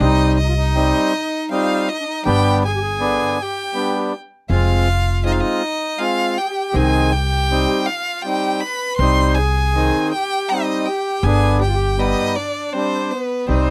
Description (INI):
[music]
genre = klezmer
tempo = 80 BPM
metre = 3/4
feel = straight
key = C harmonic minor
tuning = A4 = 442 Hz
[part]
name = clear violin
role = melody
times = 0.0-13.7 s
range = B4 to C6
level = -24 LUFS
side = equal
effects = none
[part]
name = accordion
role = second line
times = 0.0-13.7 s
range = B3 to C5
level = -28 LUFS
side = equal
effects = none
[part]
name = accordion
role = accompaniment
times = 0.0-13.7 s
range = D3 to F4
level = -22 LUFS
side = equal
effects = none
[part]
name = upright bass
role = bass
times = 0.0-13.7 s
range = F1 to C2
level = -20 LUFS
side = equal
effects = none
[sound]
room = little or no reverb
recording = dry, close 1970s-style studio recording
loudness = -19 LUFS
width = mono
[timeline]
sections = 0.0-13.7 A section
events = none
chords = 0.0 Cm; 2.3 G; 4.5 Fm; 6.8 Cm; 11.2 G